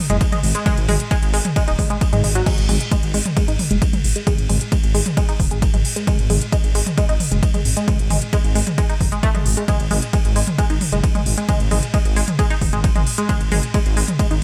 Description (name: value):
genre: driving peak-time techno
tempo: 133 BPM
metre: 4/4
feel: straight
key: unclear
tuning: A4 = 440 Hz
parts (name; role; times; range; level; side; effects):
- tight sequenced synth; riff; 0.1-14.3 s; F#3 to D#4; -27 LUFS; equal; chorus, tube saturation, sidechain pumping, delay
- dark detuned saw bass; bass; 0.1-14.4 s; D#1 to G#2; -23 LUFS; equal; sidechain pumping
- techno drum kit; drums; 0.1-14.4 s; crash cymbal, hi-hat, ride cymbal, toms; -26 LUFS; equal; overdrive, sidechain pumping on hats, sidechain pumping on toms, sidechain pumping on cymbals
- electronic kick drum; drums; 0.2-14.3 s; none; -21 LUFS; equal; overdrive
room: light reverb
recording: bright 1980s-style digital production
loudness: -18 LUFS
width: mono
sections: 0.0-14.4 A section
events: none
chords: 0.0 G#5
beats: 0.21 | 0.66 1.11 1.56 2.01 | 2.46 2.92 3.37 3.82 | 4.27 4.72 5.17 5.62 | 6.07 6.52 6.98 7.43 | 7.88 8.33 8.78 9.23 | 9.68 10.13 10.59 11.04 | 11.49 11.94 12.39 12.84 | 13.29 13.74 14.19